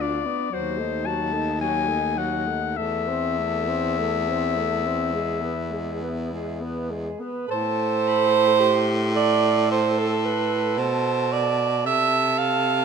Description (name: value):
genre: classical, lyrical piece for single-reed quartet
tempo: 49-58 BPM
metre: 4/4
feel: rubato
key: A minor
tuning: A4 = 440 Hz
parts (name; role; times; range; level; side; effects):
- clear clarinet; melody; 0.0-12.8 s; C5 to C6; -28 LUFS; left 11 dB; none
- clear alto saxophone; second line; 0.0-12.8 s; D4 to F5; -24 LUFS; right 8 dB; none
- mellow tenor saxophone; accompaniment; 0.0-12.8 s; F#3 to A4; -30 LUFS; left 4 dB; none
- clear baritone saxophone; bass; 0.0-12.8 s; D2 to C3; -27 LUFS; right 1 dB; none
room: moderate recital hall reverb, RT60 1.6 s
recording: none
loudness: -21 LUFS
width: side -6 dB against mid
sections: 0.0-7.5 A section; 7.5-12.8 B section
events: none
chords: 0.0 Bdim/D; 0.5 D#dim; 2.8 Am/E; 5.2 E; 7.5 Am; 11.8 Am/C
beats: 0.53 1.61 | 2.78 4.00 5.16 6.32 | 7.49 8.61 9.71 10.78 | 11.85